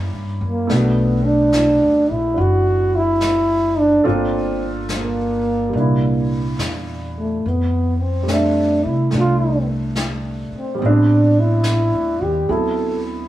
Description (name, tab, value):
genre	jazz ballad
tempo	71 BPM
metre	4/4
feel	swing 66% on 8ths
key	unclear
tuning	A4 = 442 Hz
part	warm concert grand piano	accompaniment	0.0-13.3 s	Bb2 to E5	-23 LUFS	right 1 dB	none
part	upright bass	bass	0.0-13.3 s	F#1 to C3	-21 LUFS	equal	none
part	breathy trombone	melody	0.5-13.0 s	A3 to A4	-18 LUFS	equal	none
part	vintage brush drum kit	drums	0.7-13.3 s	brushed snare drum, hi-hat, snare drum	-30 LUFS	left 2 dB	none
room	light reverb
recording	band playing live in one room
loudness	-15 LUFS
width	side -14 dB against mid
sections	0.0-13.3 A section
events	none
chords	0.0 F#7b9; 0.7 Bm7; 4.0 Gm9; 5.7 C7; 7.4 Fmaj9; 10.8 Am11; 12.5 D13